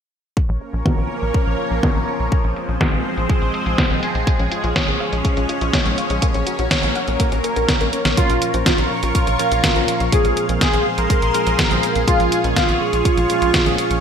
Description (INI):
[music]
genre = italo disco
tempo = 123 BPM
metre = 4/4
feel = straight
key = Bb minor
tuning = A4 = 440 Hz
[part]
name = lush unison pad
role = sustained chords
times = 0.6-14.0 s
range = F3 to Db6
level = -23 LUFS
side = equal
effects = chorus, phaser
[part]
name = detuned 8-bit digital drum machine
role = drums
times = 0.4-14.0 s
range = hi-hat, snare drum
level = -22 LUFS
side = equal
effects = low-pass filter on hats, low-pass filter on snare, low-pass filter on room, gated reverb
[part]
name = electronic kick drum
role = drums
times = 0.4-13.6 s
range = none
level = -20 LUFS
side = equal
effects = none
[part]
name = tight sequencer bass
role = bass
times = 0.5-14.0 s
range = Bb1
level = -23 LUFS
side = equal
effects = none
[part]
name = soft round pluck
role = arpeggios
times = 4.3-8.2 s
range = Ab3 to Gb5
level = -27 LUFS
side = left 2 dB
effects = chorus, cassette tape, digital delay
[part]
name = wide unison lead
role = melody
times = 8.2-13.9 s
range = F4 to Bb4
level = -19 LUFS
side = equal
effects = lush chorus, digital delay
[part]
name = tine electric piano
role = stabs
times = 8.2-14.0 s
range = Bb2 to C5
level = -24 LUFS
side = right 2 dB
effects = medium stereo tremolo
[sound]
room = moderate lush hall reverb, RT60 2.0 s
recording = bright 1980s-style digital production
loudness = -16 LUFS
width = side -7 dB against mid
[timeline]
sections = 0.4-8.2 A section; 8.2-14.0 B section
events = filter sweep on drum 0.4-8.2; drum fill 7.7-8.2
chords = 0.4 Bbm; 2.3 Fm/Bb; 4.3 Db/Bb; 6.2 Gb/Bb; 8.2 Bbm; 10.1 Fm/Bb; 12.1 Db/Bb